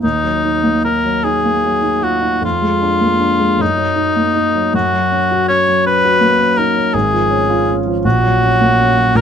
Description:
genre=classical, romantic duo for cor anglais and grand piano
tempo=48-56 BPM (dotted quarters)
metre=6/8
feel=rubato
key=Eb minor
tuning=A4 = 440 Hz
part: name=clear cor anglais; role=melody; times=0.0-9.2 s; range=Eb4 to Db5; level=-14 LUFS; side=left 1 dB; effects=none
part: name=warm concert grand piano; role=accompaniment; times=0.0-9.2 s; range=Ab1 to Gb4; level=-16 LUFS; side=equal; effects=none
room=light reverb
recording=minimal, uncompressed stereo recording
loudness=-12 LUFS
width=side -8 dB against mid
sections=0.0-9.2 A section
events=none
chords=0.0 Ebm; 2.4 Bb7/F; 3.6 Ebm/Gb; 4.7 Gb; 6.9 Db/Ab; 8.0 Gb/Bb

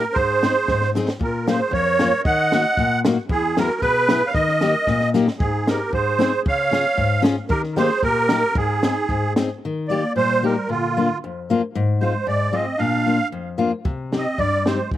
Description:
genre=alpine folk, alpine dance band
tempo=114 BPM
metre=2/4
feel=straight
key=Ab major, Eb major from 9.6 s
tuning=A4 = 440 Hz
part: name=musette accordion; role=melody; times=0.0-14.9 s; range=F4 to Gb5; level=-20 LUFS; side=right 2 dB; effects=slapback echo
part: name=fingerpicked steel-string acoustic guitar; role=accompaniment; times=0.0-15.0 s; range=E2 to Ab4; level=-22 LUFS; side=left 3 dB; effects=none
part: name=warm clarinet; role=second line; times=0.1-14.9 s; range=D3 to Eb5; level=-28 LUFS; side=right 2 dB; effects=slapback echo
part: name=compact cocktail drum kit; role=drums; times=0.2-9.5, 13.9-15.0 s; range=hi-hat, kick drum, snare drum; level=-23 LUFS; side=right 1 dB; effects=none
room=light reverb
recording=recorded outdoors, with no room sound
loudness=-18 LUFS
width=side -12 dB against mid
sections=0.0-9.6 A section; 9.6-15.0 B section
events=drum fill 0.7-1.2, 4.9-5.4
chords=0.2 Ab; 1.2 Bbm; 2.3 Ebm; 3.3 E; 4.3 Eb; 5.4 Ab; 6.5 Db; 7.5 Eb; 8.5 Ab; 9.6 Eb; 10.7 Bb; 11.7 Fm/Ab; 12.8 Bb; 13.9 Cm

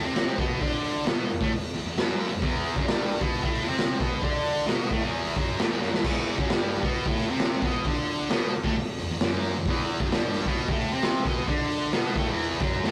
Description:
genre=garage rock duo or trio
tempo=132 BPM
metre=4/4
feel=straight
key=E minor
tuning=A4 = 443 Hz
part: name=thick fuzz guitar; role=riff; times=0.0-12.9 s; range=E2 to D4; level=-30 LUFS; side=equal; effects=distortion
part: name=raw garage drum kit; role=drums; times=0.2-12.9 s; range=crash cymbal, hi-hat, kick drum, snare drum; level=-29 LUFS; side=equal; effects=none
room=moderate stone room reverb, RT60 1.2 s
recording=rough rehearsal-room recording, warm saturation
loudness=-26 LUFS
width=mono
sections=0.0-6.0 A section; 6.0-12.9 A section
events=drum fill 5.8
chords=0.0 E5; 6.0 Em

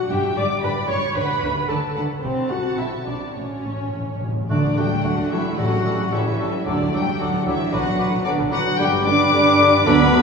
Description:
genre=quick classical-period movement for symphony orchestra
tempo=112 BPM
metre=2/4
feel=rubato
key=D major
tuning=A4 = 440 Hz
part: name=muted chamber violin section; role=melody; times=0.0-10.2 s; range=C#5 to D6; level=-25 LUFS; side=left 5 dB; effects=none
part: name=muted studio violin section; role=second line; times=0.0-10.2 s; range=A3 to D6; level=-28 LUFS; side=equal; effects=none
part: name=muted chamber viola section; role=accompaniment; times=0.0-10.2 s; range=C#3 to D5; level=-26 LUFS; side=equal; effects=none
part: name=muted chamber cello section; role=bass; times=0.1-10.2 s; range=G2 to D4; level=-26 LUFS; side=right 4 dB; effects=none
part: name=muted chamber double bass section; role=bass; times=0.1-10.2 s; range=G1 to D2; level=-29 LUFS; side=right 2 dB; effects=none
part: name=timpani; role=percussion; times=1.2-7.4, 9.9-10.2 s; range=A2 to D3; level=-27 LUFS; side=right 1 dB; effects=none
part: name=mellow hollow silver concert flute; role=second line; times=4.5-10.2 s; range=A5 to D6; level=-28 LUFS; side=left 5 dB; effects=none
part: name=warm clarinet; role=second line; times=4.5-10.2 s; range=D4 to D5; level=-25 LUFS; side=left 2 dB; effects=none
part: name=warm cor anglais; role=second line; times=4.5-10.2 s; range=F#4 to B4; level=-29 LUFS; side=right 4 dB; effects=none
part: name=mellow bassoon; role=accompaniment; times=4.5-10.2 s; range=F#3 to A3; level=-28 LUFS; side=equal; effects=none
part: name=dark French horn section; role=sustained chords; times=4.5-10.2 s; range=D3 to D4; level=-26 LUFS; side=left 2 dB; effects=none
room=wet church reverb, RT60 3.9 s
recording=recorded in a church or concert hall, small room ambience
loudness=-18 LUFS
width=side -5 dB against mid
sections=0.0-4.5 A section; 4.5-10.2 A section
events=timpani fill 3.4-4.5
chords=0.1 G5; 1.2 D6; 2.2 F#dim/C; 2.8 Asus24/B; 3.4 A; 4.5 D; 5.6 A7; 6.7 D; 7.7 Bm; 8.8 G

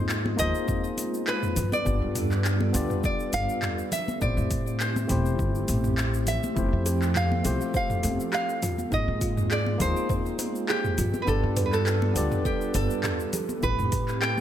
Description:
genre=sunset chillout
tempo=102 BPM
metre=4/4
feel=swing 54% on 16ths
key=unclear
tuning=A4 = 443 Hz
part: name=nylon-string guitar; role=melody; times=0.0-14.4 s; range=G4 to G5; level=-30 LUFS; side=right 2 dB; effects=tape echo
part: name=bright tine electric piano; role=accompaniment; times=0.0-14.4 s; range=F3 to Eb5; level=-32 LUFS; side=moving between left 4 dB and right 4 dB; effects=auto-pan, tape echo
part: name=airy breathy pad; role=sustained chords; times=0.0-14.4 s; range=F3 to G5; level=-34 LUFS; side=left 2 dB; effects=chorus
part: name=upright bass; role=bass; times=0.0-14.4 s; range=E1 to A2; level=-27 LUFS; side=equal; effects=none
part: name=deep house drum kit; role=drums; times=0.1-14.4 s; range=handclaps, hi-hat, shaker, toms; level=-31 LUFS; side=equal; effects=overdrive
part: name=congas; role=percussion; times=0.3-14.4 s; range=none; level=-36 LUFS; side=left 1 dB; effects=none
part: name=electronic kick drum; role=drums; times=0.4-14.1 s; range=none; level=-31 LUFS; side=equal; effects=overdrive
part: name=kalimba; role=arpeggios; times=6.6-14.4 s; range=D4 to D5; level=-36 LUFS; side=right 3 dB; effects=tape echo
room=light reverb, small room ambience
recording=none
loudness=-24 LUFS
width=side -10 dB against mid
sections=0.0-14.4 A section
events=none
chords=0.0 Ab69; 1.6 G7; 3.9 Am7; 6.6 Fmaj9; 8.6 Ab69; 11.0 G7; 13.3 Am9

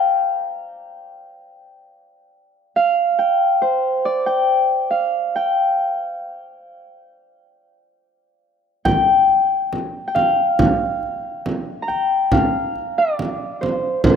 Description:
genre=mongolian traditional, Mongolian folk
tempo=69 BPM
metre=4/4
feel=straight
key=G yu mode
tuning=A4 = 438 Hz
part: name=Celtic harp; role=melody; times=0.0-14.2 s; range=C5 to Bb5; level=-17 LUFS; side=left 1 dB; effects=none
part: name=frame drum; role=percussion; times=8.9-14.2 s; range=none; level=-20 LUFS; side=right 2 dB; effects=none
room=light reverb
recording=rough home demo mix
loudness=-17 LUFS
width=side -7 dB against mid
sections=0.0-8.8 A section; 8.8-14.2 B section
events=none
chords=none

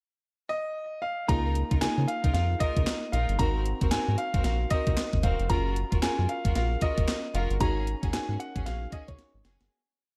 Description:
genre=R&B, new jack swing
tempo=114 BPM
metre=4/4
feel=swing 61% on 16ths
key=Db major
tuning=A4 = 440 Hz
part: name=clear baby grand piano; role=melody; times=0.5-9.4 s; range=Db5 to Bb5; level=-35 LUFS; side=equal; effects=none
part: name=mellow FM electric piano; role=accompaniment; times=1.3-9.7 s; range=Bb3 to Bb4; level=-38 LUFS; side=equal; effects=chorus
part: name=rich symphonic string section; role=stabs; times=1.3-9.6 s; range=C4 to Bb4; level=-40 LUFS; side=equal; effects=none
part: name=round analog bass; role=bass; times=1.3-9.7 s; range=Fb1 to Db3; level=-31 LUFS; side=equal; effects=none
part: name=gated 80s digital drum machine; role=drums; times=1.3-9.7 s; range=handclaps, hi-hat, kick drum, snare drum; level=-31 LUFS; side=equal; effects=gated reverb, gated reverb snare
room=digital ambience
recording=none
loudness=-28 LUFS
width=mono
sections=0.0-1.3 pickup bar; 1.3-9.7 verse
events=fade-out 7.6-9.7; drum fill 9.2-9.7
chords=0.0 N.C.; 1.3 Db69; 3.4 Ab9; 5.5 Gbmaj7; 7.6 Ab7sus4

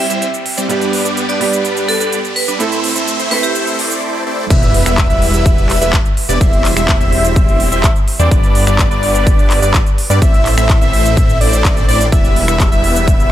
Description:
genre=EDM, festival progressive house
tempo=126 BPM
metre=4/4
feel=straight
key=E minor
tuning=A4 = 440 Hz
part: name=vibraphone with hard mallets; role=melody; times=0.0-3.6 s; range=G4 to E5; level=-21 LUFS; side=equal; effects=dub echo
part: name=bright concert grand piano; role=accompaniment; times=0.0-4.5 s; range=G2 to A4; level=-20 LUFS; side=right 5 dB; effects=vintage 12-bit sampler grit, sidechain pumping, dub echo
part: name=big supersaw lead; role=riff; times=0.0-13.3 s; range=G3 to E5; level=-19 LUFS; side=right 1 dB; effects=phaser, sidechain pumping, low-pass filter, dub echo
part: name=riser and sub drop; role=sound effects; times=0.0-6.4 s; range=none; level=-23 LUFS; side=left 1 dB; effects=none
part: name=big-room dance drum kit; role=drums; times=0.1-13.3 s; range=crash cymbal, finger snaps, handclaps, hi-hat, shaker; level=-20 LUFS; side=right 1 dB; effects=none
part: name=wide unison lead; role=arpeggios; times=4.5-13.3 s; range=D5 to E5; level=-18 LUFS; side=equal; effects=sidechain pumping, dub echo
part: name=wide detuned saw bass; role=bass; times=4.5-13.3 s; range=E1 to G2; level=-16 LUFS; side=equal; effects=chorus, sidechain pumping
part: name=electronic kick drum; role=drums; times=4.5-13.2 s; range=none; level=-12 LUFS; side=equal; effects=none
room=light reverb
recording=high-pass filter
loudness=-10 LUFS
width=side -12 dB against mid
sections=0.0-4.5 A section; 4.5-13.3 B section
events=build-up 0.0-4.5; riser 0.0-4.0; break 4.0-4.5; drop 4.5-13.3; impact 4.5-6.4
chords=0.0 C; 0.7 G; 2.6 Am; 4.5 Em; 6.4 C/E; 8.3 G; 10.2 Am; 12.1 Em

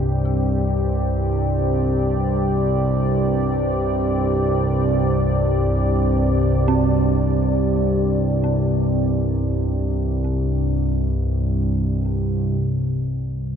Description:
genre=dark ambient drone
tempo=free time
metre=none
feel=none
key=unclear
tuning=A4 = 439 Hz
part: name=dark analog pad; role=sustained chords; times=0.0-12.6 s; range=C4 to D5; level=-24 LUFS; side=right 1 dB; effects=chorus
part: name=dark detuned synth bell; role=arpeggios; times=0.0-13.6 s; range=C4 to G4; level=-29 LUFS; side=right 7 dB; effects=chorus, phaser, ping-pong delay
part: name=analog drone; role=drone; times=0.0-13.6 s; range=C2 to G2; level=-19 LUFS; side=equal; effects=chorus
room=wet cathedral reverb, RT60 4.8 s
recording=none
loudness=-18 LUFS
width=side -8 dB against mid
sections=0.0-12.6 A section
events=fade-in on analog synth pad 0.0-12.6; fade-in on synth bell 0.0-12.6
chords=0.0 C5

